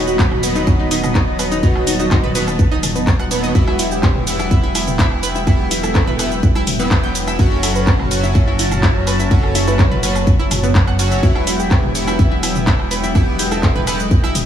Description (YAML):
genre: melodic techno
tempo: 125 BPM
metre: 4/4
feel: straight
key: E harmonic minor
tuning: A4 = 442 Hz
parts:
  - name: warm analog pad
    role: sustained chords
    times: 0.0-14.5 s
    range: F#3 to B5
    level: -25 LUFS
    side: left 2 dB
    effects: chorus, vintage 12-bit sampler grit, sidechain pumping
  - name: sync-sweep polysynth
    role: stabs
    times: 0.0-14.0 s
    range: B2 to F#4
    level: -23 LUFS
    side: right 2 dB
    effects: chorus, sidechain pumping, analog delay
  - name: dark detuned saw bass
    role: bass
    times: 0.0-14.5 s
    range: D#1 to F#1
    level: -21 LUFS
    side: equal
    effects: sidechain pumping
  - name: wide unison lead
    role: melody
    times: 0.1-13.8 s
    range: F#4 to B4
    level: -26 LUFS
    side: equal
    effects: sidechain pumping, tape echo
  - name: house drum kit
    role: drums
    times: 0.1-14.4 s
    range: handclaps, hi-hat, shaker, toms, woodblock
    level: -22 LUFS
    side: equal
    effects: sidechain pumping on perc, sidechain pumping on hats, sidechain pumping on toms
  - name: electronic kick drum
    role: drums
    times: 0.2-14.2 s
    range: none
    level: -14 LUFS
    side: equal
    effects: none
  - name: analog pluck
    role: arpeggios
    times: 0.6-14.3 s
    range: B3 to G5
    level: -23 LUFS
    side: left 1 dB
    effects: chorus, sidechain pumping, analog delay
room: light reverb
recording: small room ambience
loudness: -13 LUFS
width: side -9 dB against mid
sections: 0.0-14.5 A section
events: none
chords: 0.0 B/D#; 3.6 Emadd9; 7.4 F#m; 11.2 Emadd9